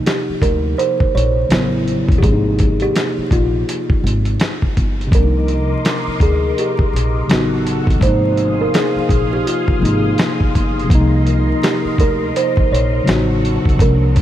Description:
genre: lo-fi hip hop.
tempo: 83 BPM.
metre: 4/4.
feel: swing 62% on 16ths.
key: C minor.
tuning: A4 = 440 Hz.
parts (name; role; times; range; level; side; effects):
mellow tine electric piano; accompaniment; 0.0-14.2 s; B2 to E4; -20 LUFS; left 1 dB; medium stereo tremolo, cassette tape, low-pass filter.
kalimba; melody; 0.1-14.2 s; E4 to Db5; -21 LUFS; right 1 dB; low-pass filter, analog delay.
dusty soul sampler-style drum kit; drums; 0.1-14.2 s; hi-hat, kick drum, snare drum; -17 LUFS; equal; none.
upright bass; bass; 0.3-14.2 s; G1 to Eb2; -18 LUFS; equal; none.
phased string machine; sustained chords; 5.3-14.2 s; D4 to E6; -24 LUFS; equal; ensemble chorus, phaser, low-pass filter.
room: moderate huge ambient reverb, RT60 7.2 s.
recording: dreamy mix soaked in reverb, vinyl crackle.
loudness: -13 LUFS.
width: side -12 dB against mid.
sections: 0.0-14.2 A section.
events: none.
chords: 0.0 Cm9; 1.5 A6; 2.2 Ab6; 5.1 Cm9; 7.3 A6; 8.0 Ab6; 10.9 Cm9; 13.1 A6.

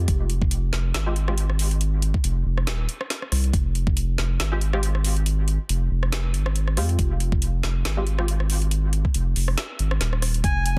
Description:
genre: deep dubstep.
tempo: 139 BPM.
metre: 4/4.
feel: swing 55% on 16ths, half-time.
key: F minor.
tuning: A4 = 440 Hz.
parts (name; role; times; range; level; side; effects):
filtered dub chord stab; stabs; 0.0-1.3, 4.5-8.2 s; Ab3 to G4; -35 LUFS; equal; ensemble chorus, dub echo.
saturated sub bass; bass; 0.0-10.8 s; Eb1 to F2; -25 LUFS; equal; none.
electronic kick drum; drums; 0.1-3.9, 7.0-10.5 s; none; -25 LUFS; equal; overdrive.
garage drum kit; drums; 0.1-10.8 s; hi-hat, rim click, snare drum; -32 LUFS; equal; overdrive.
melodica; melody; 10.4-10.8 s; Ab5; -28 LUFS; equal; none.
deep dark ambient pad; sustained chords; 10.6-10.8 s; F4 to F5; -57 LUFS; equal; none.
room: digital ambience.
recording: dense, heavily limited modern master.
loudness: -23 LUFS.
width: mono.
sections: 0.0-10.8 A section.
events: none.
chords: 0.0 Fmadd9.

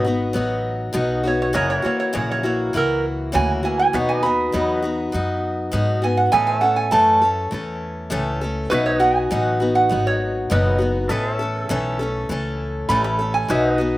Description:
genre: honky-tonk and classic country.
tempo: 100 BPM.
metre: 4/4.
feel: straight.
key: unclear.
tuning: A4 = 440 Hz.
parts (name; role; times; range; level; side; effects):
lap resonator guitar; second line; 0.0-14.0 s; A#4 to B5; -20 LUFS; right 2 dB; none.
picked acoustic archtop guitar; accompaniment; 0.0-14.0 s; F#2 to A4; -22 LUFS; left 2 dB; slapback echo.
pedal steel guitar; sustained chords; 0.0-14.0 s; F#4 to E5; -30 LUFS; equal; wide subtle chorus.
upright bass; bass; 0.0-14.0 s; F#1 to A2; -25 LUFS; equal; none.
room: little or no reverb.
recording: recorded outdoors, with no room sound.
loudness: -18 LUFS.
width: side -17 dB against mid.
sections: 0.0-14.0 A section.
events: resonator guitar played with a steel bar solo 0.0-14.0.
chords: 0.0 B; 1.6 F#7; 3.9 B; 6.3 A; 8.7 B; 11.1 A.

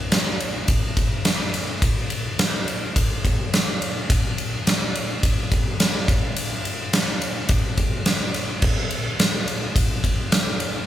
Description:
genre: rock.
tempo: 106 BPM.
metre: 4/4.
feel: straight.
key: none.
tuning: none.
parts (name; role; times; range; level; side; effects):
huge arena drum kit; drums; 0.1-10.7 s; crash cymbal, kick drum, ride cymbal, snare drum; -20 LUFS; equal; none.
room: light reverb.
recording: band playing live in one room, faint mains hum.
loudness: -20 LUFS.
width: side -12 dB against mid.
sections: 0.0-10.9 A section.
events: none.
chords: none.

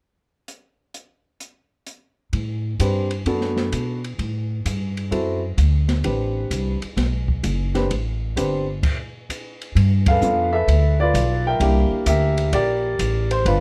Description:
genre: jazz piano trio.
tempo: 130 BPM.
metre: 4/4.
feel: swing 67% on 8ths.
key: unclear.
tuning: A4 = 439 Hz.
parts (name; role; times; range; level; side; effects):
open jazz drum kit; drums; 0.5-13.6 s; crash cymbal, hi-hat, kick drum, ride cymbal, snare drum; -30 LUFS; equal; none.
upright bass; bass; 2.3-13.6 s; F#1 to B2; -23 LUFS; equal; none.
warm baby grand piano; melody; 2.8-13.6 s; Bb3 to G5; -24 LUFS; equal; none.
room: light reverb.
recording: dark, warm production.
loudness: -21 LUFS.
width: mono.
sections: 0.5-2.3 A section; 2.3-9.7 B section; 9.7-13.6 C section.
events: stop 8.8-9.7; band accent 10.0.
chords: 0.5 N.C.; 2.3 Am11; 3.3 Bm7; 4.2 Gsus2; 5.1 D7; 6.0 Am11; 7.0 B5; 7.9 Am11; 8.8 N.C.; 9.7 G9; 11.6 C9.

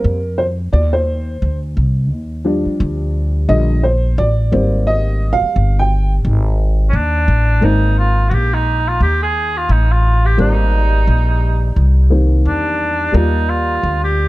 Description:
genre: hip hop, jazz-hop.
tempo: 87 BPM.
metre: 4/4.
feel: swing 58% on 16ths.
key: Ab lydian.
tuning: A4 = 444 Hz.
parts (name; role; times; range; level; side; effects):
dark upright piano; accompaniment; 0.0-14.3 s; D3 to G5; -19 LUFS; equal; none.
upright bass; bass; 0.0-14.3 s; G1 to F2; -14 LUFS; equal; none.
mellow cor anglais; melody; 6.9-14.3 s; Db4 to Ab4; -18 LUFS; right 1 dB; tape echo.
room: light reverb.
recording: dark, warm production.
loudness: -13 LUFS.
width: side -18 dB against mid.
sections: 0.0-7.6 A section; 7.6-14.3 B section.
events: upright piano solo 0.0-7.6.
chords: 0.0 Abadd9 (rootless); 2.1 Ebmaj9; 4.5 Abmaj9; 13.1 Ebmaj9.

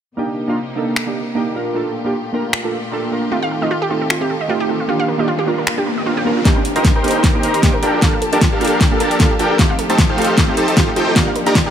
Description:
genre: future bass.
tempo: 153 BPM.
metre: 4/4.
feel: swing 56% on 16ths, half-time.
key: unclear.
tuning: A4 = 444 Hz.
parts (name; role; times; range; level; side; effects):
glassy digital keys; accompaniment; 0.2-11.5 s; A3 to Bb4; -20 LUFS; right 2 dB; chorus, sidechain pumping, dub echo.
warm studio string section; sustained chords; 0.2-11.7 s; Bb2 to A5; -26 LUFS; left 2 dB; sidechain pumping.
pop drum kit; drums; 1.0-11.6 s; finger snaps, hi-hat, snare drum; -19 LUFS; equal; small room ambience.
wide unison pluck; arpeggios; 3.3-11.7 s; F4 to Bb5; -23 LUFS; right 2 dB; sidechain pumping, dub echo.
riser; sound effects; 4.6-6.5 s; none; -27 LUFS; left 1 dB; none.
supersaw chords; riff; 6.5-11.7 s; D4 to Bb5; -17 LUFS; equal; sidechain pumping, low-pass filter, dub echo.
electronic kick drum; drums; 6.5-11.6 s; none; -16 LUFS; left 1 dB; small room ambience.
room: light reverb.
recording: none.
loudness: -14 LUFS.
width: side -9 dB against mid.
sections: 0.2-6.5 A section; 6.5-11.7 B section.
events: riser 4.6-6.5; build-up 6.5-11.7; drum fill 6.5-11.7; filter sweep on supersaw synth 6.5-11.7.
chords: 0.2 Cm7; 1.6 Gm9; 3.3 F9; 4.9 Ebmaj9; 6.5 Cm7; 7.8 Gm9; 9.6 F9; 11.2 Ebmaj9.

